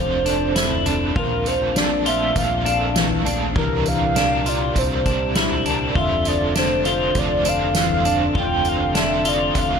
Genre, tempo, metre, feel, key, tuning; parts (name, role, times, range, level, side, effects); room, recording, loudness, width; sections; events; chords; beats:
dream pop; 100 BPM; 4/4; straight; F major; A4 = 440 Hz
warbly nostalgic lead; melody; 0.0-9.8 s; Bb4 to G5; -23 LUFS; right 1 dB; chorus, tremolo, ping-pong delay, shimmer reverb
crunchy overdriven guitar; accompaniment; 0.0-9.8 s; Bb2 to C5; -27 LUFS; right 4 dB; tremolo, ensemble chorus, shimmer reverb
mellow tonewheel organ; sustained chords; 0.0-9.8 s; Bb2 to A4; -28 LUFS; right 2 dB; slow rotary speaker, shimmer reverb
clean electric guitar; arpeggios; 0.0-9.8 s; E3 to F4; -24 LUFS; left 6 dB; lush chorus, ping-pong delay, shimmer reverb
fat analog bass; bass; 0.0-9.8 s; F1 to C2; -27 LUFS; equal
soft-mallet drum kit; drums; 0.3-9.7 s; kick drum, snare drum, tambourine, toms; -24 LUFS; equal
moderate lush hall reverb, RT60 2.7 s; -17 LUFS; side -6 dB against mid
0.0-9.8 A section
0.0 F6; 1.2 Bbmaj9; 3.6 C9sus4; 6.0 F6
0.56 | 1.16 1.76 2.36 2.96 | 3.56 4.16 4.76 5.36 | 5.96 6.56 7.16 7.76 | 8.36 8.96 9.56